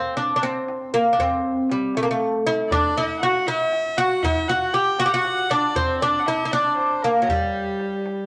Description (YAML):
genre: Persian modal ensemble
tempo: 79 BPM (dotted quarters)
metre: 6/8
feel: straight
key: G avaz esfahan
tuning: A4 = 442 Hz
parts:
  - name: oud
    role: melody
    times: 0.0-8.3 s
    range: F#3 to G4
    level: -22 LUFS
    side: equal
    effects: none
  - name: tombak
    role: percussion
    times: 0.2-8.2 s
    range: none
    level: -34 LUFS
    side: equal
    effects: none
  - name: rich violin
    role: second line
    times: 2.7-8.3 s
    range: G4 to G5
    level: -28 LUFS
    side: equal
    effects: none
room: moderate club reverb, RT60 0.8 s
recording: none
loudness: -22 LUFS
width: mono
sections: 0.0-8.3 A section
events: none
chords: none